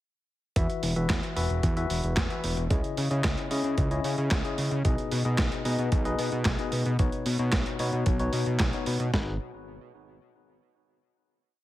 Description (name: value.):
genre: italo disco.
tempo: 112 BPM.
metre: 4/4.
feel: straight.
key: unclear.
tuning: A4 = 440 Hz.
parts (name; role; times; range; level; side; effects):
tine electric piano; stabs; 0.6-9.3 s; B2 to E5; -31 LUFS; left 4 dB; medium stereo tremolo, ping-pong delay.
fat analog bass; bass; 0.6-9.4 s; E1 to C#3; -29 LUFS; equal; ping-pong delay.
dusty soul sampler-style drum kit; drums; 0.6-9.3 s; kick drum, snare drum; -28 LUFS; right 1 dB; overdrive.
dusty soul sampler-style drum kit; drums; 0.6-9.1 s; handclaps, hi-hat, snare drum; -32 LUFS; right 1 dB; overdrive.
room: light reverb, digital ambience.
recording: heavily compressed radio sound.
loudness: -25 LUFS.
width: side -15 dB against mid.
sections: 0.6-9.1 chorus; 9.1-11.3 final chord.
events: none.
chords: 0.6 Esus2; 2.7 C#madd9; 4.8 G#m/B; 7.0 Badd9; 9.1 N.C..